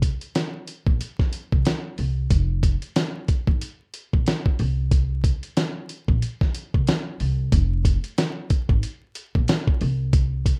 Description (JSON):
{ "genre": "hip hop, boom-bap hip-hop", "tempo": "92 BPM", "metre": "4/4", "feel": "swing 59% on 16ths", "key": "unclear", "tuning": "A4 = 440 Hz", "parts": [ { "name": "upright bass", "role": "bass", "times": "0.0-10.5 s", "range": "F1 to C2", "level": "-26 LUFS", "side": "equal", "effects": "none" }, { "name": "dusty soul sampler-style drum kit", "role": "drums", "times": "0.0-10.6 s", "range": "hi-hat, kick drum, snare drum", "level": "-23 LUFS", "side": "equal", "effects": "none" } ], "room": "little or no reverb", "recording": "rough home demo mix, vinyl crackle", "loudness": "-23 LUFS", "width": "mono", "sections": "0.0-7.5 A section; 7.5-10.6 B section", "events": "none", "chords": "none", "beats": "0.35 1.00 1.65 | 2.31 2.96 3.61 4.26 | 4.92 5.57 6.22 6.87 | 7.52 8.18 8.83 9.48 | 10.13" }